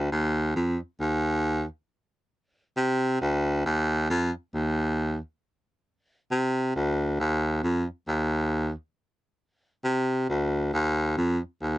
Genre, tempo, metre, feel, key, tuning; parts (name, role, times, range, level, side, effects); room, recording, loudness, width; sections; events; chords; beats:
reggae; 68 BPM; 4/4; straight; A4 = 440 Hz
clear baritone saxophone; solo; 0.0-11.8 s; D2 to C3; -24 LUFS; equal
light reverb; dry, close 1970s-style studio recording; -25 LUFS; side -16 dB against mid
0.0-11.8 A section
| 0.10 0.98 1.87 2.75 | 3.64 4.52 5.41 6.29 | 7.17 8.06 8.94 9.83 | 10.71 11.60